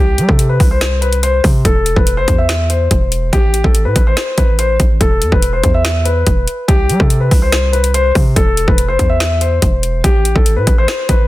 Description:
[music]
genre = hip hop, trap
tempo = 143 BPM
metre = 4/4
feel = half-time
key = unclear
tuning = A4 = 440 Hz
[part]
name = dark grand piano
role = melody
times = 0.0-11.3 s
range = G4 to E5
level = -17 LUFS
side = left 2 dB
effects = digital delay
[part]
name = hard-hitting 808-style bass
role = bass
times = 0.0-11.3 s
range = E1 to G3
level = -15 LUFS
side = equal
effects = none
[part]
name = trap drum kit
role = drums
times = 0.2-11.2 s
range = hi-hat, kick drum, snare drum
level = -14 LUFS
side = equal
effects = none
[sound]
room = light reverb, digital ambience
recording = dense, heavily limited modern master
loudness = -11 LUFS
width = side -16 dB against mid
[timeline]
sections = 0.0-11.3 A section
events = none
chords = 0.0 C5; 1.6 Am/E (rootless); 3.3 Am; 5.0 E5; 6.7 C5; 8.4 Am/E (rootless); 10.0 Am9

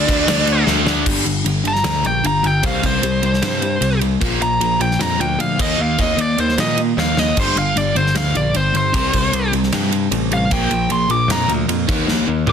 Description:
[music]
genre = hard rock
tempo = 152 BPM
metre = 4/4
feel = straight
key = G minor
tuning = A4 = 441 Hz
[part]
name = biting lead guitar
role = melody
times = 0.0-12.5 s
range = C5 to D6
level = -20 LUFS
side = equal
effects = overdrive, slapback echo
[part]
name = nasal lead guitar with a parked wah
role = second line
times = 0.0-0.6 s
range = none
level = barely audible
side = none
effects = none
[part]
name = crunchy overdriven guitar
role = riff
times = 0.0-12.5 s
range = G2 to Eb4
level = -22 LUFS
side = left 10 dB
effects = none
[part]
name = crunchy overdriven guitar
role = riff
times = 0.0-12.5 s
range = G2 to Eb4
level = -24 LUFS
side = right 12 dB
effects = phaser
[part]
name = sludgy distorted guitar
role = riff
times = 0.0-1.1 s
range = D3 to D4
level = -24 LUFS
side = right 1 dB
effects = overdrive
[part]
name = modern bright picked electric bass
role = bass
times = 0.0-12.5 s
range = G1 to Bb2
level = -22 LUFS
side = equal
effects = none
[part]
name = gated 80s drum kit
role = drums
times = 0.1-12.5 s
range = crash cymbal, kick drum, ride cymbal, snare drum, toms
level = -21 LUFS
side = right 1 dB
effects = none
[sound]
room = light reverb, studio reverb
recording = dense, heavily limited modern master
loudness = -15 LUFS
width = side -7 dB against mid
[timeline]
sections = 0.0-1.1 A section; 1.1-12.5 B section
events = drum fill 0.7-1.1, 7.0-7.4, 12.1-12.5; lead electric guitar solo 1.1-12.5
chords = 0.0 D5; 1.1 Gm; 2.6 C5; 4.2 Bb; 5.6 Eb5; 7.4 G5; 8.9 C5; 10.5 Bb; 11.9 Eb5

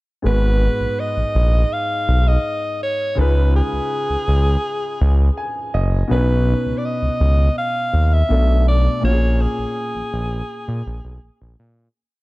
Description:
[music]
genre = contemporary R&B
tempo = 82 BPM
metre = 4/4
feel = straight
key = G# dorian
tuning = A4 = 439 Hz
[part]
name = warm grand piano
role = accompaniment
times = 0.2-12.0 s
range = G#2 to G#5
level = -25 LUFS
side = left 1 dB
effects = none
[part]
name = smooth synth bass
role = bass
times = 0.2-11.9 s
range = F#1 to A#2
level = -16 LUFS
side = equal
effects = none
[part]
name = warm alto saxophone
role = melody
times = 0.3-11.6 s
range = G#4 to E#5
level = -23 LUFS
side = equal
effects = tape echo
[sound]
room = small room reverb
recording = none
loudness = -16 LUFS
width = side -20 dB against mid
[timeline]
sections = 0.2-12.0 verse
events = grand piano fill 5.0-6.1; fade-out 9.0-12.0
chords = 0.2 G#m7; 3.2 C#7; 6.1 B; 8.3 Bm7; 9.0 A#m7

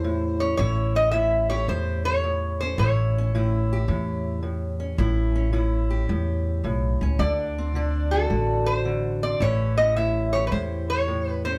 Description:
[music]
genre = acoustic country blues, solo or duo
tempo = 109 BPM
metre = 4/4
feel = swing 68% on 8ths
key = A mixolydian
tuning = A4 = 442 Hz
[part]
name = metal-body resonator slide guitar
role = melody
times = 0.0-3.8, 7.2-11.6 s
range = A4 to E5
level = -28 LUFS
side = equal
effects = none
[part]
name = fingerpicked steel-string acoustic guitar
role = accompaniment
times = 0.0-11.6 s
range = A2 to G4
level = -31 LUFS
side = equal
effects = none
[part]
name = upright bass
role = bass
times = 0.0-11.6 s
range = A1 to E2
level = -27 LUFS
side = equal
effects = none
[sound]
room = light reverb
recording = band playing live in one room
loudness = -24 LUFS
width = mono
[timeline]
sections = 0.0-11.6 A section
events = none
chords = 0.0 A7; 7.2 D7; 9.4 A7

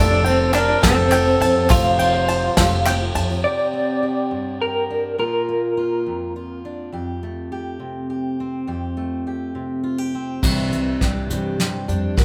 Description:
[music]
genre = indie folk with a building arrangement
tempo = 69 BPM (dotted quarters)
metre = 6/8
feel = straight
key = F major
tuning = A4 = 440 Hz
[part]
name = electric guitar through a small old amp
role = melody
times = 0.0-6.6 s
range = C4 to D5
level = -22 LUFS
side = equal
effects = tremolo
[part]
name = warm trumpet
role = second line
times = 0.0-2.8 s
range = A4 to C5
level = -25 LUFS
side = equal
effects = none
[part]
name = dark upright piano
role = accompaniment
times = 0.0-3.5 s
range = F1 to G4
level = -32 LUFS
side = equal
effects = none
[part]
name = picked steel-string acoustic guitar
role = accompaniment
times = 0.0-3.4, 10.4-12.2 s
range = Bb2 to Bb4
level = -30 LUFS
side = equal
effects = none
[part]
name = bluegrass banjo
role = arpeggios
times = 0.0-3.4 s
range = A4 to A5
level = -28 LUFS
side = equal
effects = none
[part]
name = upright bass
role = bass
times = 0.0-3.4, 10.4-12.2 s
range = F1 to C3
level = -26 LUFS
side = equal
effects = none
[part]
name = soft brush drum kit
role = drums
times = 0.3-3.3, 10.4-12.2 s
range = crash cymbal, hi-hat, kick drum, ride cymbal, snare drum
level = -24 LUFS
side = equal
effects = none
[part]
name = group handclap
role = percussion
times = 0.5-3.0 s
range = none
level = -31 LUFS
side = equal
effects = none
[part]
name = tambourine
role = percussion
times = 0.8-3.4 s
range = none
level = -37 LUFS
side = equal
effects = none
[part]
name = fingerpicked steel-string acoustic guitar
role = accompaniment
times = 3.4-12.2 s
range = F2 to G4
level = -27 LUFS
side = equal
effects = none
[sound]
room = moderate large studio reverb, RT60 1.1 s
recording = band playing live in one room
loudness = -20 LUFS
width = mono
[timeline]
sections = 0.0-3.4 A section; 3.4-10.4 B section; 10.4-12.2 C section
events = build-up 10.4-12.2; drum fill 10.4-12.2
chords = 0.0 Fadd9; 3.4 Csus2; 5.2 Bb; 6.9 Fadd9; 10.4 Cadd9

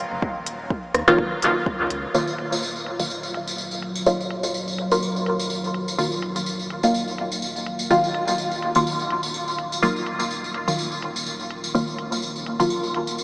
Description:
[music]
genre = dub techno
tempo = 125 BPM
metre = 4/4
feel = swing 55% on 16ths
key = Eb minor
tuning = A4 = 440 Hz
[part]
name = soft dub sub bass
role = bass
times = 0.0-13.2 s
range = Eb1 to Eb2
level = -41 LUFS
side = equal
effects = sidechain pumping
[part]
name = electronic kick drum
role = drums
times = 0.2-1.8 s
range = none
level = -26 LUFS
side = equal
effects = none
[part]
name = deep house drum kit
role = drums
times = 0.5-13.1 s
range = hi-hat, rim click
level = -30 LUFS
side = equal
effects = low-pass filter on hats, low-pass filter on snare, dub echo
[part]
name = filtered dub chord stab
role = stabs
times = 1.1-12.9 s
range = Eb3 to F4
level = -22 LUFS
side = equal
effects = phaser, sidechain pumping, dub echo
[part]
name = deep dark ambient pad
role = sustained chords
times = 3.2-13.2 s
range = Gb3 to Bb4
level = -32 LUFS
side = equal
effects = chorus, built-in reverb, sidechain pumping
[part]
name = tambourine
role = percussion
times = 2.1-13.2 s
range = none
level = -29 LUFS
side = equal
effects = none
[sound]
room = wet huge ambient reverb, RT60 7.6 s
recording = dreamy mix soaked in reverb, vinyl crackle, small speaker sound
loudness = -21 LUFS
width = side -24 dB against mid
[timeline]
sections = 0.0-2.1 A section; 2.1-13.2 B section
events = filter sweep on ambient pad 2.1-13.2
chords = 0.0 Ebmadd9

